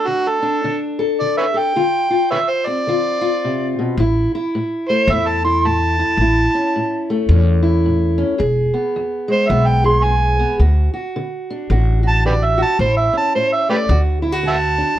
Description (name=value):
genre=acoustic country blues, solo or duo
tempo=109 BPM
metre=4/4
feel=swing 60% on 8ths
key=unclear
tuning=A4 = 444 Hz
part: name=overdriven harmonica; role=melody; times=0.0-15.0 s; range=F#4 to C6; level=-17 LUFS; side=right 2 dB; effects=plate reverb
part: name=fingerpicked steel-string acoustic guitar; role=accompaniment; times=0.0-15.0 s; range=E2 to A4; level=-20 LUFS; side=left 1 dB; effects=none
part: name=upright bass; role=bass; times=4.0-14.8 s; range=E1 to E2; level=-16 LUFS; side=equal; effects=none
room=light reverb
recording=dark, warm production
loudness=-15 LUFS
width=side -12 dB against mid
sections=0.0-15.0 A section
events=harmonica solo 0.0-15.0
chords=0.0 D5; 1.8 Dm7; 4.0 A; 8.4 E; 10.6 D; 12.8 A; 13.9 D